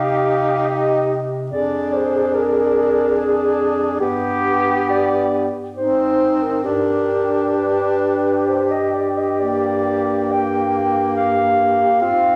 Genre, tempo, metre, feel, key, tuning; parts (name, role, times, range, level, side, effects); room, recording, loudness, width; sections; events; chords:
classical, lyrical piece for single-reed quartet; 64-74 BPM; 3/4; rubato; A4 = 440 Hz
dark clarinet; melody; 0.0-12.4 s; G4 to G5; -22 LUFS; equal
mellow alto saxophone; second line; 0.0-12.4 s; Eb4 to Ab4; -23 LUFS; equal
clear tenor saxophone; accompaniment; 0.0-12.4 s; Bb3 to Eb4; -26 LUFS; equal
warm bass clarinet; bass; 0.0-12.4 s; F2 to C3; -29 LUFS; equal
wet recital hall reverb, RT60 1.4 s; -18 LUFS; mono
0.0-12.4 A section
0.0 Cm; 1.5 Ddim/F; 4.0 G; 5.8 Ab; 6.7 G; 9.4 Gm